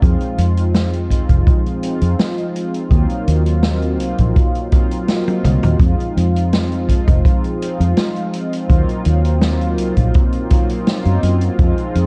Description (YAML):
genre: vaporwave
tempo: 83 BPM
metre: 4/4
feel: straight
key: Eb dorian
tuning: A4 = 440 Hz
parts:
  - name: mellow synth brass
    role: accompaniment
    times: 0.0-12.1 s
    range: F3 to F4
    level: -23 LUFS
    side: equal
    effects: subtle chorus, analog delay
  - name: fingered electric bass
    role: bass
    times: 0.0-12.1 s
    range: F1 to Gb2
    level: -18 LUFS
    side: equal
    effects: tube saturation
  - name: kick drum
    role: drums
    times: 0.0-11.7 s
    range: none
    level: -16 LUFS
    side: equal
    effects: none
  - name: swinging big-band drum kit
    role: drums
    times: 0.0-12.1 s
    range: hi-hat, snare drum, toms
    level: -23 LUFS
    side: equal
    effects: none
room: small room ambience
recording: dark, warm production, cassette tape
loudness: -16 LUFS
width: mono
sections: 0.0-12.1 A section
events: drum fill 5.3-5.8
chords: 0.0 Fm7; 2.9 Ebm69; 5.8 Fm7; 8.7 Ebm69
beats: | 0.02 0.75 1.47 2.19 | 2.91 3.64 4.36 5.08 | 5.81 6.53 7.25 7.97 | 8.70 9.42 10.14 10.87 | 11.59